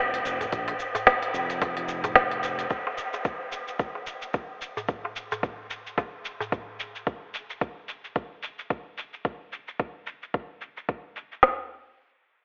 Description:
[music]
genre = organic downtempo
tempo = 110 BPM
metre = 4/4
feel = swing 58% on 16ths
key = unclear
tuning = A4 = 440 Hz
[part]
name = smooth synth bass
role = bass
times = 0.0-2.7 s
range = F1 to Bb1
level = -40 LUFS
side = equal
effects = none
[part]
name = organic electronic drum kit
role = drums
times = 0.1-11.4 s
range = hi-hat, shaker, snare drum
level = -28 LUFS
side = equal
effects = low-pass filter on hats, studio reverb, low-pass filter on perc, low-pass filter on snare
[part]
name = darbuka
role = percussion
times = 0.4-6.5 s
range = none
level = -41 LUFS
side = equal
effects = none
[part]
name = organic electronic drum kit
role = drums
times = 0.5-11.6 s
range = kick drum, snare drum, toms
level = -25 LUFS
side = equal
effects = studio reverb
[sound]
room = wet huge ambient reverb, RT60 8.9 s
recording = dreamy mix soaked in reverb, telephone sound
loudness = -29 LUFS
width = mono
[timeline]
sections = 0.0-11.4 A section; 11.4-12.4 B section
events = filter sweep on drum 0.0-11.4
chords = none

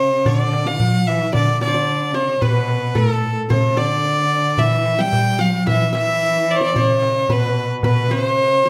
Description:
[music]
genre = Arabic maqam ensemble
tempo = 111 BPM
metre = 4/4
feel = straight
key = D maqam rast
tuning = A4 = 440 Hz
[part]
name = bright violin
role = melody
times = 0.0-8.7 s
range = A4 to G5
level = -21 LUFS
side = equal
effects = none
[part]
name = qanun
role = second line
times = 0.0-8.7 s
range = A4 to G5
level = -30 LUFS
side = equal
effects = none
[part]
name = rich cello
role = second line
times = 0.0-8.7 s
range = A2 to G3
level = -25 LUFS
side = equal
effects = none
[part]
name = darbuka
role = percussion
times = 0.3-8.6 s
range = none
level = -22 LUFS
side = equal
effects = none
[sound]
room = wet recital hall reverb, RT60 1.4 s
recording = none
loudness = -18 LUFS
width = mono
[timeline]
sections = 0.0-8.7 A section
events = none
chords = none

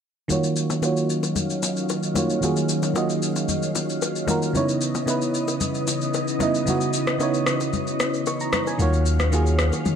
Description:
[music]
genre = amapiano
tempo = 113 BPM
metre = 4/4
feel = straight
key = unclear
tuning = A4 = 440 Hz
[part]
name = FM electric piano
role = accompaniment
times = 0.3-10.0 s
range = Db3 to Db6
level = -24 LUFS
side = right 3 dB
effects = chorus, low-pass filter
[part]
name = ensemble organ-string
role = sustained chords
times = 0.3-10.0 s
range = Db3 to F5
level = -27 LUFS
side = left 1 dB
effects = ensemble chorus, low-pass filter
[part]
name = electronic shaker and rim click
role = drums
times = 0.3-10.0 s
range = none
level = -28 LUFS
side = left 2 dB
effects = overdrive, vintage 12-bit sampler grit
[part]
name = congas and bongos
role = percussion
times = 0.3-10.0 s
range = none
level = -31 LUFS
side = left 6 dB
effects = none
[part]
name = punchy sub bass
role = bass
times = 8.8-10.0 s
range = Eb2 to Eb3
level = -20 LUFS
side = left 1 dB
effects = none
[sound]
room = light reverb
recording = none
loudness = -20 LUFS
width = side -8 dB against mid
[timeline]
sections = 0.3-10.0 A section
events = filter sweep 0.3-10.0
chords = 0.3 Ebm9; 4.5 Dbm9; 8.8 Ebm9

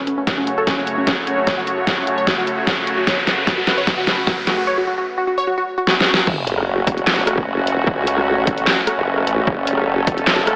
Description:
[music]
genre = heavy wobble dubstep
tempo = 150 BPM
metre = 4/4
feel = half-time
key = F# minor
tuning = A4 = 441 Hz
[part]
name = wide unison pluck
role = melody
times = 0.0-6.2 s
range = C#4 to C#5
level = -21 LUFS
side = equal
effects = digital delay
[part]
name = supersaw pad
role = sustained chords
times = 0.0-10.6 s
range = F#2 to C#5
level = -22 LUFS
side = equal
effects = sidechain pumping
[part]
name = riser and sub drop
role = sound effects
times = 1.6-7.9 s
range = none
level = -25 LUFS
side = equal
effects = none
[part]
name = dubstep drum kit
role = drums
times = 0.1-10.6 s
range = crash cymbal, handclaps, hi-hat, rim click, snare drum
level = -18 LUFS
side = equal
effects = overdrive
[part]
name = electronic kick drum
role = drums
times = 0.3-10.2 s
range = none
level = -23 LUFS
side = equal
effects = overdrive
[part]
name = formant-sweep wobble bass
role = bass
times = 6.3-10.6 s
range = E1 to C#2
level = -20 LUFS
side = equal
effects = chorus, overdrive
[sound]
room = light reverb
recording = AM radio sound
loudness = -15 LUFS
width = side -32 dB against mid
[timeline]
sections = 0.0-6.3 A section; 6.3-10.6 B section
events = build-up 0.0-6.3; drum fill 0.0-4.7, 5.9-6.3; riser 1.6-4.7; drop 6.3-10.6; impact 6.3-7.9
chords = 0.0 F#m

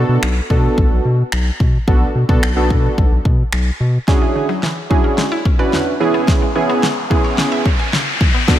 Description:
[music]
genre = dance-pop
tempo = 109 BPM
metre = 4/4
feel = straight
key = unclear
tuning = A4 = 442 Hz
[part]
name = warm analog keys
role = accompaniment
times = 0.0-8.6 s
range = B3 to B4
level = -18 LUFS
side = right 2 dB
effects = chorus
[part]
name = round analog bass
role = bass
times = 0.0-4.0 s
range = B1 to B2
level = -16 LUFS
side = equal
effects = sidechain pumping
[part]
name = pop drum kit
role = drums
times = 0.2-8.6 s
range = finger snaps, kick drum, snare drum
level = -16 LUFS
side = equal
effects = none
[part]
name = mallet-like synth pluck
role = arpeggios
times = 4.1-8.6 s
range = E2 to G#5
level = -24 LUFS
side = left 3 dB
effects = chorus, sidechain pumping, tape echo
[part]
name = riser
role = sound effects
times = 5.5-8.6 s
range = none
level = -23 LUFS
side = left 2 dB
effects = none
[sound]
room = light reverb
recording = none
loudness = -13 LUFS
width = side -12 dB against mid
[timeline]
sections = 0.0-4.1 A section; 4.1-8.6 B section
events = build-up 4.1-8.6; drum fill 4.1-8.6; filter sweep 4.1-8.6; riser 5.5-8.6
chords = 0.0 Bm7; 4.1 E13; 6.0 C#m7

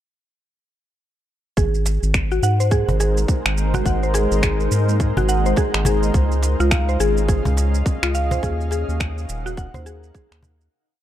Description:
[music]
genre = organic downtempo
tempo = 105 BPM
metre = 4/4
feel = swing 60% on 16ths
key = Ab mixolydian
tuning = A4 = 439 Hz
[part]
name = granular cloud pad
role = sustained chords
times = 2.9-10.7 s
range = Ab3 to Gb5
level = -26 LUFS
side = right 1 dB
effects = built-in reverb, sidechain pumping, shimmer reverb
[part]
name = mallet-like synth pluck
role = arpeggios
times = 1.6-10.3 s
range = F4 to Gb5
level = -24 LUFS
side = left 1 dB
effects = chorus, vintage 12-bit sampler grit, tape echo, shimmer reverb
[part]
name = round analog bass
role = bass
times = 1.6-10.7 s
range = Eb1 to Ab2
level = -20 LUFS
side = equal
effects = sidechain pumping
[part]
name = electronic kick drum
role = drums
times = 1.6-10.3 s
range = none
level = -21 LUFS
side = equal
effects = overdrive
[part]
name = electronic shaker and finger snaps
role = drums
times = 1.6-10.7 s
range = none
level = -25 LUFS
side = right 1 dB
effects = overdrive
[part]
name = cajon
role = percussion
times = 1.9-10.6 s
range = none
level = -26 LUFS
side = left 1 dB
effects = none
[sound]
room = light reverb, digital ambience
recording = dark, warm production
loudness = -17 LUFS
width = side -12 dB against mid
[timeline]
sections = 1.6-10.7 groove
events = fade-out 7.7-10.7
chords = 1.6 Abadd9; 6.1 Db; 8.4 Ebm

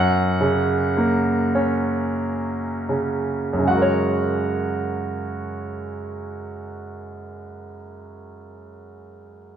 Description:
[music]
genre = classical, lyrical solo piano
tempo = 24-38 BPM (dotted quarters)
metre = 6/8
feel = rubato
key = F# major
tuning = A4 = 439 Hz
[part]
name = bright concert grand piano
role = solo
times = 0.0-9.6 s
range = F#2 to F#5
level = -21 LUFS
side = right 1 dB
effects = none
[sound]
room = moderate recital hall reverb, RT60 1.6 s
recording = minimal, uncompressed stereo recording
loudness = -20 LUFS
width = side -9 dB against mid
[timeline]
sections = 0.0-3.7 A section; 3.7-8.4 B section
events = slowing down 0.0-3.7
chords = 0.0 F#; 3.7 F#add9

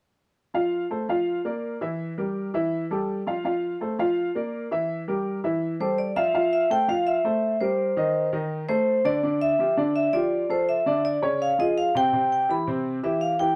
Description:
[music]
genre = jazz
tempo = 166 BPM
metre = 4/4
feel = straight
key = unclear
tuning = A4 = 440 Hz
[part]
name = warm upright piano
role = accompaniment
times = 0.5-13.6 s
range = C3 to F5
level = -28 LUFS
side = equal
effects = none
[part]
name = vibraphone with medium hard mallets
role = melody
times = 5.8-13.6 s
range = C5 to B5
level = -25 LUFS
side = equal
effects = none
[sound]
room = light reverb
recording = close, detailed microphones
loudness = -25 LUFS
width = mono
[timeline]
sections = 0.5-6.3 A section; 6.3-13.6 B section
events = none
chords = 0.5 F; 1.3 Bb; 2.0 Edim; 2.7 A5; 3.4 F; 4.2 Bb; 4.9 Edim; 5.6 A5; 6.3 Fmaj9; 7.8 Cm7; 8.5 Cm69; 9.2 Dmadd9; 11.4 C#; 12.1 C

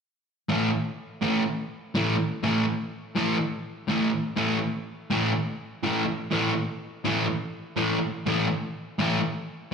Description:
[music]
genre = rock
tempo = 124 BPM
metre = 4/4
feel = straight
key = unclear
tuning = A4 = 444 Hz
[part]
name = fuzz guitar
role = solo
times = 0.5-9.2 s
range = A2 to A3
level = -25 LUFS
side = equal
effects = distortion, slapback echo
[sound]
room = moderate plate reverb, RT60 2.7 s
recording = live gig heard through the venue's PA, club reverb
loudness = -25 LUFS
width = side -6 dB against mid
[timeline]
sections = 0.5-9.7 A section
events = none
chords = 0.5 A5

